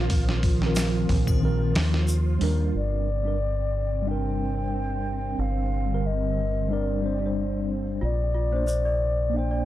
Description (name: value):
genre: trip hop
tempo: 91 BPM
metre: 4/4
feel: swing 55% on 16ths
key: G minor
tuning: A4 = 443 Hz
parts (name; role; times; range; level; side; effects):
- mellow tine electric piano; accompaniment; 0.0-9.7 s; D3 to C5; -30 LUFS; equal; medium stereo tremolo, harmonic tremolo, vintage 12-bit sampler grit, tape echo
- string machine, cellos; sustained chords; 0.0-9.7 s; F3 to F4; -34 LUFS; equal; phaser, ensemble chorus
- deep dub fingered electric bass; bass; 0.0-9.7 s; G1 to Eb2; -26 LUFS; equal; tube saturation
- dusty soul sampler-style drum kit; drums; 0.1-2.6 s; hi-hat, kick drum, snare drum; -26 LUFS; equal; none
- egg shaker and triangle; percussion; 0.8-2.2, 8.7-8.8 s; none; -38 LUFS; left 1 dB; none
- mellow hollow baroque flute; melody; 2.8-9.7 s; D5 to G5; -30 LUFS; left 3 dB; vintage 12-bit sampler grit
- small celesta; arpeggios; 8.0-9.7 s; F4 to D5; -33 LUFS; right 3 dB; tape echo
room: little or no reverb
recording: dry, gritty hardware recording, cassette tape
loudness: -23 LUFS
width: side -14 dB against mid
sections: 0.0-2.7 A section; 2.7-9.7 B section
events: filter sweep on tine electric piano 0.0-2.7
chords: 0.0 Cm7; 2.7 Gm; 8.0 Bbadd9